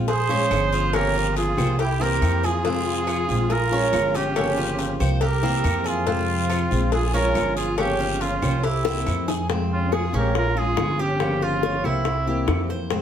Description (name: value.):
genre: latin, Cuban son and guajira.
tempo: 140 BPM.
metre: 4/4.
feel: straight.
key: F minor from 9.5 s.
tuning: A4 = 440 Hz.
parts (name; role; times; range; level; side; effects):
flamenco guitar; accompaniment; 0.0-13.0 s; C3 to G4; -29 LUFS; left 3 dB; none.
Cuban tres; arpeggios; 0.0-13.0 s; C4 to Db5; -29 LUFS; right 4 dB; none.
upright bass; bass; 0.0-13.0 s; G1 to F2; -25 LUFS; right 1 dB; none.
breathy trumpet; melody; 0.1-12.7 s; E4 to C5; -26 LUFS; right 2 dB; none.
musette accordion; second line; 0.1-12.7 s; C4 to Ab4; -31 LUFS; left 1 dB; none.
cowbell and bongos; percussion; 0.1-13.0 s; none; -29 LUFS; left 7 dB; none.
guiro; percussion; 0.1-9.5 s; none; -37 LUFS; left 6 dB; none.
claves; percussion; 0.5-12.7 s; none; -38 LUFS; left 2 dB; none.
room: moderate studio reverb, RT60 0.8 s.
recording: heard from further back in the room.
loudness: -20 LUFS.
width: side -9 dB against mid.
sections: 0.0-9.5 A section; 9.5-13.0 B section.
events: drum fill 8.9-9.5.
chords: 0.1 Bbm7; 0.9 Gm7b5; 1.8 C7; 2.6 Fm; 3.5 Bbm7; 4.4 Gm7b5; 5.2 C7; 6.1 Fm; 6.9 Bbm7; 7.8 Gm7b5; 8.6 C7; 9.5 Fm; 10.3 Bbm7; 11.2 Gm7b5; 12.1 C7.